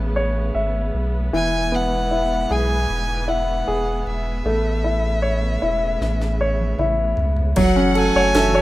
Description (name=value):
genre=pop ballad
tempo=77 BPM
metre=4/4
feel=straight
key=unclear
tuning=A4 = 440 Hz
part: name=bright concert grand piano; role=accompaniment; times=0.0-8.6 s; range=E3 to E5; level=-21 LUFS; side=equal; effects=plate reverb
part: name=warm studio string section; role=sustained chords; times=0.0-8.6 s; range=G#2 to F#4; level=-30 LUFS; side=right 1 dB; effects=none
part: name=saturated sub bass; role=bass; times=0.0-8.6 s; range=E1 to C#2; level=-23 LUFS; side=equal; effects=none
part: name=warm violin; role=melody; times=1.3-8.6 s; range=E5 to G#5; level=-26 LUFS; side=right 1 dB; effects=none
part: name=house drum kit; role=drums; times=6.0-8.5 s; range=crash cymbal, kick drum, ride cymbal, snare drum, toms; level=-26 LUFS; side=equal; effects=overdrive
part: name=rich studio violin section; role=second line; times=7.6-8.6 s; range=E5 to F#5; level=-25 LUFS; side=equal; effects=none
room=light reverb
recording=rough home demo mix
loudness=-18 LUFS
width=side -16 dB against mid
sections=0.0-7.6 A section; 7.6-8.6 B section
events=drum fill 6.0-7.6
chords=0.0 Aadd9; 1.3 E; 4.4 Aadd9; 7.6 F#m7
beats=0.55 | 1.33 2.11 2.89 3.67 | 4.45 5.23 6.01 6.79 | 7.57 8.34